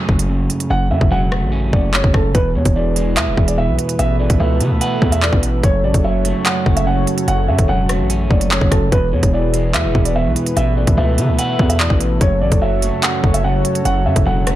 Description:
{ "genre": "hip hop, drill", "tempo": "146 BPM", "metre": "4/4", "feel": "half-time", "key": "F# minor", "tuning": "A4 = 440 Hz", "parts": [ { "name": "electric guitar at the edge of break-up", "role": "accompaniment", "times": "0.0-14.6 s", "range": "E2 to B4", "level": "-21 LUFS", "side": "right 2 dB", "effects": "none" }, { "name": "hard-hitting 808-style bass", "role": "bass", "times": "0.1-14.6 s", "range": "E1 to C#3", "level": "-18 LUFS", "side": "equal", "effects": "none" }, { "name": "drill drum kit", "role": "drums", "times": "0.1-14.6 s", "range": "handclaps, hi-hat, kick drum, rim click", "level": "-17 LUFS", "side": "equal", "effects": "none" }, { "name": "dark concert grand piano", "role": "melody", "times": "0.7-14.6 s", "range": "A4 to F#5", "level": "-21 LUFS", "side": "right 2 dB", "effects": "digital delay" }, { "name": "warm analog pad", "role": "sustained chords", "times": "2.3-14.6 s", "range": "E3 to E5", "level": "-24 LUFS", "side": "equal", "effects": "chorus" } ], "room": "little or no reverb", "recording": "dark, warm production", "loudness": "-13 LUFS", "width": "side -14 dB against mid", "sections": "0.0-14.6 A section", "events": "break 0.0-0.7; hi-hats muted 0.7-2.3", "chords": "0.0 F#m; 2.3 E; 4.0 Asus2; 5.6 F#m; 8.9 E; 10.6 Asus2; 12.2 F#m", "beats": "0.29 | 0.70 1.11 1.52 1.94 | 2.35 2.76 3.17 3.58 | 3.99 4.40 4.81 5.22 | 5.63 6.05 6.46 6.87 | 7.28 7.69 8.10 8.51 | 8.92 9.33 9.74 10.15 | 10.57 10.98 11.39 11.80 | 12.21 12.62 13.03 13.44 | 13.85 14.27" }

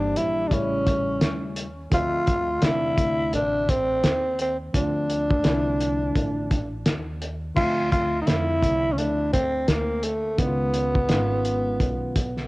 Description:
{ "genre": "hip hop, jazz-hop", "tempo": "85 BPM", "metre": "4/4", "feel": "swing 60% on 16ths", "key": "D minor", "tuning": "A4 = 440 Hz", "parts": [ { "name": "growling tenor saxophone", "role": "melody", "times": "0.0-12.5 s", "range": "A3 to F4", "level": "-24 LUFS", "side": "equal", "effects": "cassette tape, analog delay" }, { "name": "mellow tine electric piano", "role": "accompaniment", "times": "0.0-12.2 s", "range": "C3 to E5", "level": "-30 LUFS", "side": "equal", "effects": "slow stereo tremolo" }, { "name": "upright bass", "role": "bass", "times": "0.0-12.5 s", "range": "G1 to F2", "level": "-30 LUFS", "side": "equal", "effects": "none" }, { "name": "cloth-damped thuddy drum kit", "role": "drums", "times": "0.2-12.4 s", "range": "crash cymbal, hi-hat, kick drum, snare drum", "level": "-25 LUFS", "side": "equal", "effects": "cassette tape" } ], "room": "small room ambience", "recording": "home recording on cassette", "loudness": "-21 LUFS", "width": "side -21 dB against mid", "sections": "0.0-7.6 A section; 7.6-12.5 A section", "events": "none", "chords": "0.0 Em7b5; 0.5 A7; 1.9 Dm7; 10.4 C#9", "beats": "0.51 1.22 | 1.92 2.63 3.33 4.04 | 4.74 5.45 6.16 6.86 | 7.57 8.27 8.98 9.69 | 10.39 11.10 11.80" }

